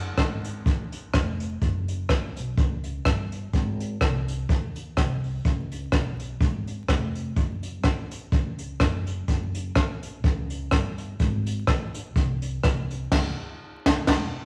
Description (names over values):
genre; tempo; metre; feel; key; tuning
ska; 125 BPM; 4/4; swing 55% on 8ths; unclear; A4 = 440 Hz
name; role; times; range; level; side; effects
upright bass; bass; 0.0-14.3 s; E1 to D#2; -34 LUFS; equal; none
jazz brush drum kit; drums; 0.2-14.2 s; crash cymbal, hi-hat, kick drum, rim click, snare drum; -26 LUFS; equal; none
room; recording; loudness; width
moderate large studio reverb, RT60 1.1 s; vinyl crackle; -26 LUFS; mono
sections
0.0-14.5 A section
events
band accent 13.1-14.5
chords
none